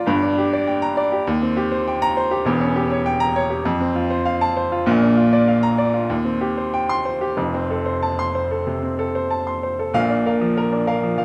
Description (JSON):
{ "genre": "classical, virtuoso piano study", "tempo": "92-102 BPM", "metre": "4/4", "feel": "rubato", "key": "Bb major", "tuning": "A4 = 440 Hz", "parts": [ { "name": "clear baby grand piano", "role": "solo", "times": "0.0-11.2 s", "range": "E1 to C6", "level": "-20 LUFS", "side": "equal", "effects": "none" } ], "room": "wet large studio reverb, RT60 1.4 s", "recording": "none", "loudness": "-20 LUFS", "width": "mono", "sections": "0.0-9.9 A section; 9.9-11.2 B section", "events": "none", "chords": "0.1 Gm; 1.3 Cm7/Eb; 2.5 Edim7; 3.6 F; 4.9 Bb; 6.1 Cm/Eb; 7.4 F; 9.9 Bb" }